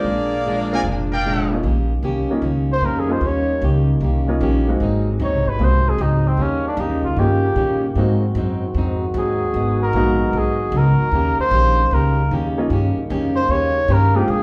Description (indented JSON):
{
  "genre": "jazz, big band swing",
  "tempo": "152 BPM",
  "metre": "4/4",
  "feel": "swing 67% on 8ths",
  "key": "Eb mixolydian",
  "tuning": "A4 = 440 Hz",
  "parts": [
    { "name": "clear saxophone section", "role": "melody", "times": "0.0-1.3 s", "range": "Bb3 to D5", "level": "-25 LUFS", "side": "equal", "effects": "none" },
    { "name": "warm upright piano", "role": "accompaniment", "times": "0.0-14.3 s", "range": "G3 to Gb4", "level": "-26 LUFS", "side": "equal", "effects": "none" },
    { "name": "upright bass", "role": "bass", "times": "0.0-14.4 s", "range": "F1 to Bb2", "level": "-22 LUFS", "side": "equal", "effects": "none" },
    { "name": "fingerpicked plugged-in steel-string acoustic guitar", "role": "accompaniment", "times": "0.1-14.4 s", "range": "Ab2 to G4", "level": "-27 LUFS", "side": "equal", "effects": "none" },
    { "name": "clear trumpet section", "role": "stabs", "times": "0.7-1.6 s", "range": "Bb4 to Ab5", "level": "-26 LUFS", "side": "equal", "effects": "none" },
    { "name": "mellow trombone section", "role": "sustained chords", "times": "1.6-14.4 s", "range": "C3 to Gb4", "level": "-29 LUFS", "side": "equal", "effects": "none" },
    { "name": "trumpet with bucket mute", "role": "melody", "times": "2.7-14.4 s", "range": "C4 to Db5", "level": "-23 LUFS", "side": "equal", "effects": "none" }
  ],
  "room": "wet large studio reverb, RT60 0.8 s",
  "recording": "band playing live in one room",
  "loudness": "-19 LUFS",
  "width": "mono",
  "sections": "0.0-1.6 A section; 1.6-14.4 B section",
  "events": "muted trumpet solo 1.6-14.4",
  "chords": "0.0 Bb7; 1.6 Eb7; 4.8 Ab7; 6.4 Eb7; 8.0 Ab7; 9.6 Abm7; 11.1 Eb7",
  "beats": "| 0.05 0.45 0.84 1.24 | 1.64 2.03 2.43 2.83 | 3.22 3.62 4.01 4.41 | 4.81 5.20 5.60 5.99 | 6.39 6.79 7.18 7.58 | 7.97 8.37 8.76 9.16 | 9.55 9.95 10.34 10.74 | 11.13 11.53 11.92 12.31 | 12.71 13.10 13.49 13.89 | 14.28"
}